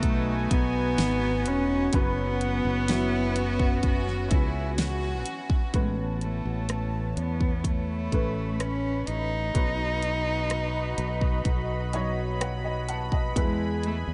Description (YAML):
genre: pop ballad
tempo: 63 BPM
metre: 4/4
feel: straight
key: B mixolydian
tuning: A4 = 441 Hz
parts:
  - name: warm cello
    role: melody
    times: 0.0-14.1 s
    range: G#3 to D#4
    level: -32 LUFS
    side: equal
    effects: diffuse ambient delay
  - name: clear upright piano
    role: accompaniment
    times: 0.0-14.1 s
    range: A2 to A5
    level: -38 LUFS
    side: equal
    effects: lush chorus
  - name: warm analog pad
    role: sustained chords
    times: 0.0-14.1 s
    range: E3 to B5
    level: -37 LUFS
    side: equal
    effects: chorus
  - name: fingered electric bass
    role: bass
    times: 0.0-14.1 s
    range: E1 to E2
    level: -32 LUFS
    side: equal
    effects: none
  - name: pop drum kit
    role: drums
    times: 0.0-14.1 s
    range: hi-hat, kick drum, rim click, snare drum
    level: -30 LUFS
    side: equal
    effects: none
  - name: warm studio cello section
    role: second line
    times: 2.9-5.7 s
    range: E4 to F#4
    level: -38 LUFS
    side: equal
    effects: diffuse ambient delay
room: moderate huge ambient reverb, RT60 5.9 s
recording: dreamy mix soaked in reverb, nothing above 10.4 kHz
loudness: -27 LUFS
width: mono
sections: 0.0-5.7 A section; 5.7-14.1 B section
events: upright piano fill 11.5-13.4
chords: 0.0 B; 1.9 F#sus4; 5.7 Aadd9; 9.6 B; 13.4 E